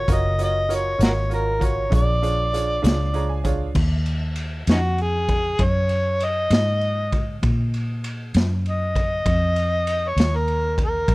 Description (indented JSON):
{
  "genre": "slow blues",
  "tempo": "65 BPM (dotted quarters)",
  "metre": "12/8",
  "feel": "straight",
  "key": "Eb minor",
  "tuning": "A4 = 441 Hz",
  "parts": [
    { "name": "overdriven harmonica", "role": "melody", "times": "0.0-11.1 s", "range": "Db4 to Eb5", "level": "-24 LUFS", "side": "equal", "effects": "none" },
    { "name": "vintage muted fingered electric bass", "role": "bass", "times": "0.0-11.1 s", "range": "Gb1 to Bb2", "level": "-23 LUFS", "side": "equal", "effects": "none" },
    { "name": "bright upright piano", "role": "accompaniment", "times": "0.1-3.7 s", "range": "D4 to Bb5", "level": "-28 LUFS", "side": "right 5 dB", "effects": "none" },
    { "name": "raw garage drum kit", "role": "drums", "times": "0.1-11.1 s", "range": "crash cymbal, hi-hat, kick drum, ride cymbal, snare drum", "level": "-23 LUFS", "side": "equal", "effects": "none" }
  ],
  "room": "small room ambience",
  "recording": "none",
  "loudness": "-19 LUFS",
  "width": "side -21 dB against mid",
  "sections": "0.0-3.8 A section; 3.8-11.1 B section",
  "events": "upright piano fill 2.8-3.8; harmonica solo 3.8-11.1",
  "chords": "0.0 Ebm9; 1.9 Bb7#9; 3.8 Ebmadd9"
}